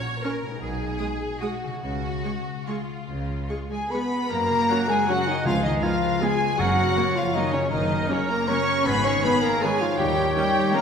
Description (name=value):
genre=classical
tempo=137-173 BPM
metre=3/4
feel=rubato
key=F# major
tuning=A4 = 440 Hz
part: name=clear symphonic violin section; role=second line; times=0.0-10.8 s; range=C#4 to C#5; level=-33 LUFS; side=left 1 dB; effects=none
part: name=concert harp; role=arpeggios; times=0.0-10.8 s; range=F#2 to C#5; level=-31 LUFS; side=left 5 dB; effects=none
part: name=clear symphonic violin section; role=melody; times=0.2-10.8 s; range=C#5 to D#6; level=-28 LUFS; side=left 3 dB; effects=none
part: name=rich symphonic viola section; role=accompaniment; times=0.2-10.8 s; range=D#3 to A#4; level=-33 LUFS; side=right 1 dB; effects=none
part: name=clear symphonic double bass section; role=bass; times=0.6-10.3 s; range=F#1 to F#2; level=-33 LUFS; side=right 2 dB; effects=none
part: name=rich symphonic cello section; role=bass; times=0.6-10.8 s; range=B2 to C#4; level=-30 LUFS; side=right 4 dB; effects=none
part: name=mellow clarinet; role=second line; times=3.7-10.8 s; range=C#4 to C#5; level=-29 LUFS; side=equal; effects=none
part: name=mellow hollow concert flute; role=second line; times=3.7-10.8 s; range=C#5 to C#6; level=-29 LUFS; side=equal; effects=none
part: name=dark French horn section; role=sustained chords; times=3.7-10.8 s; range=C#3 to C#4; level=-30 LUFS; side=left 1 dB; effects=none
part: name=warm oboe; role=second line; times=4.7-10.8 s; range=F#4 to C#5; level=-29 LUFS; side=right 2 dB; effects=none
part: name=timpani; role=percussion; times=5.5-7.1 s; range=F#2 to C#3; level=-32 LUFS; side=left 2 dB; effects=none
room=wet scoring stage reverb, RT60 1.8 s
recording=minimal, uncompressed stereo recording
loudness=-21 LUFS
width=side -6 dB against mid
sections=0.0-4.3 A section; 4.3-10.8 B section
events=none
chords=0.0 F#/A# (rootless); 0.6 G#m/B; 1.8 C#; 4.3 F#; 5.5 C#7; 6.6 F#; 8.9 G#m; 10.0 D#7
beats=0.23 | 0.60 0.99 1.41 | 1.82 2.24 2.67 | 3.08 3.49 3.91 | 4.31 4.69 5.09 | 5.46 5.83 6.22 | 6.59 6.96 7.35 | 7.71 8.09 8.49 | 8.86 9.23 9.62 | 9.99 10.36 10.74